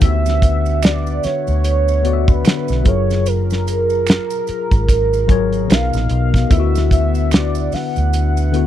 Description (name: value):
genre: R&B, neo-soul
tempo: 74 BPM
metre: 4/4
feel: swing 59% on 16ths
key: unclear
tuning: A4 = 440 Hz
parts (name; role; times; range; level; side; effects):
- warm velvety synth lead; melody; 0.0-8.7 s; A#4 to F#5; -21 LUFS; right 2 dB; chorus, tape echo
- tine electric piano; accompaniment; 0.0-8.7 s; B2 to E5; -22 LUFS; left 14 dB; phaser
- glass harmonica; sustained chords; 0.0-8.7 s; B3 to F#5; -28 LUFS; right 2 dB; none
- vintage muted fingered electric bass; bass; 0.0-8.7 s; F#1 to D2; -17 LUFS; right 1 dB; none
- cloth-damped thuddy drum kit; drums; 0.0-8.7 s; hi-hat, kick drum, snare drum; -14 LUFS; right 1 dB; none
- maracas and finger snaps; percussion; 0.0-8.5 s; none; -33 LUFS; right 13 dB; none
room: little or no reverb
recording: dry, close 1970s-style studio recording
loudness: -14 LUFS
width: side -11 dB against mid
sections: 0.0-8.7 A section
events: none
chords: 0.0 D69; 2.9 F#maj9; 5.7 Bmaj7; 6.5 D69